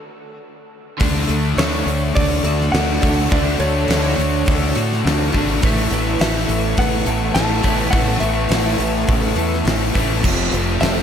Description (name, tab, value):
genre	rock, shoegaze and dream pop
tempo	104 BPM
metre	4/4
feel	straight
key	unclear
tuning	A4 = 440 Hz
part	direct-recorded clean electric guitar	melody	0.0-11.0 s	A4 to A5	-25 LUFS	equal	lush chorus, analog delay
part	string machine, violas	sustained chords	1.0-11.0 s	D4 to E6	-28 LUFS	right 2 dB	ensemble chorus
part	picked twelve-string acoustic guitar	arpeggios	1.0-11.0 s	E3 to A4	-28 LUFS	right 2 dB	ensemble chorus, analog delay
part	overdriven electric guitar	riff	1.0-11.0 s	F2 to D4	-25 LUFS	right 2 dB	none
part	thick fuzz guitar	riff	1.0-11.0 s	F2 to D4	-24 LUFS	left 7 dB	distortion, lush chorus
part	growling fingered electric bass	bass	1.0-11.0 s	F1 to A2	-21 LUFS	right 1 dB	overdrive
part	gated 80s drum kit	drums	1.0-11.0 s	crash cymbal, hi-hat, kick drum, snare drum	-21 LUFS	equal	none
part	electric guitar through a small old amp	riff	10.2-11.0 s	F3 to E4	-36 LUFS	right 13 dB	none
room	moderate huge ambient reverb, RT60 8.6 s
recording	dreamy mix soaked in reverb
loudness	-15 LUFS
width	side -8 dB against mid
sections	0.0-1.0 A section; 1.0-11.0 B section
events	stop 0.0-1.0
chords	0.0 N.C.; 1.0 Dmaj7; 5.6 Aadd9; 10.2 Fmaj7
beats	0.42 | 1.00 1.58 2.16 2.73 | 3.31 3.89 4.47 5.04 | 5.62 6.20 6.77 7.35 | 7.93 8.50 9.08 9.66 | 10.23 10.81